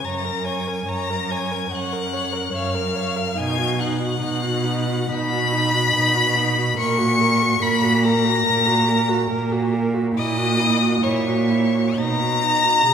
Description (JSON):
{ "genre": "classical, slow romantic movement for string quartet", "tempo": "71 BPM", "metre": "4/4", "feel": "rubato", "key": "F# major", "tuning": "A4 = 437 Hz", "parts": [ { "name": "rich violin", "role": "melody", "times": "0.0-12.9 s", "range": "C#6 to C#7", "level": "-24 LUFS", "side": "left 6 dB", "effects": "none" }, { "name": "clear violin", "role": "second line", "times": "0.0-12.9 s", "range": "C#5 to C#6", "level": "-24 LUFS", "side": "left 2 dB", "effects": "none" }, { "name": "dark viola", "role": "accompaniment", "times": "0.0-12.9 s", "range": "D#4 to C#5", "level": "-26 LUFS", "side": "right 2 dB", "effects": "none" }, { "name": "warm cello", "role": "bass", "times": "0.0-12.9 s", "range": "F#2 to C#3", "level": "-22 LUFS", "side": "right 3 dB", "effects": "none" } ], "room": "wet concert hall reverb, RT60 1.8 s", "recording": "recorded in a church or concert hall", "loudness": "-18 LUFS", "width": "side -7 dB against mid", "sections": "0.0-12.9 A section", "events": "none", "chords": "0.0 F#; 3.4 B; 6.8 F#/A#; 10.2 F#7/A#; 12.0 B" }